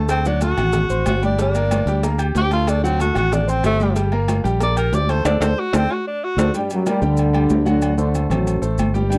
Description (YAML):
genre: latin, salsa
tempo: 186 BPM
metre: 4/4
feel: straight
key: G harmonic minor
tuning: A4 = 440 Hz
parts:
  - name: clear concert grand piano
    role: accompaniment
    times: 0.0-9.2 s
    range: F#3 to G6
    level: -27 LUFS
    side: equal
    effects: none
  - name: fingered electric bass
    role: bass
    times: 0.0-9.2 s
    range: G1 to D2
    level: -23 LUFS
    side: equal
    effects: none
  - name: clear tenor saxophone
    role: melody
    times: 0.1-6.5 s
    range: A3 to D5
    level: -24 LUFS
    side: equal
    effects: none
  - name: agogo bells and timbales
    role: percussion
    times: 0.1-9.2 s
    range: none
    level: -32 LUFS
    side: equal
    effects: none
  - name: congas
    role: percussion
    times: 0.1-9.2 s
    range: none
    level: -28 LUFS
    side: equal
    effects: none
  - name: cowbell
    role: percussion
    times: 0.1-6.5 s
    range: none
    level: -34 LUFS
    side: equal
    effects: none
  - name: maracas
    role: percussion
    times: 0.1-9.2 s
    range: none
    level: -41 LUFS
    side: equal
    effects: none
  - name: warm trombone section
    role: melody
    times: 6.6-9.2 s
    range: F#2 to D4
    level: -22 LUFS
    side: equal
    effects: none
room: light reverb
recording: dry, close 1970s-style studio recording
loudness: -19 LUFS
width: mono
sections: 0.0-6.5 A section; 6.5-9.2 B section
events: tenor saxophone solo 0.0-6.5; band accent 5.3-6.5; drum fill 5.6-6.5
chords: 0.1 D7; 1.4 Gm; 2.7 D7; 4.0 Gm; 5.3 D7; 6.5 Gm; 7.8 D7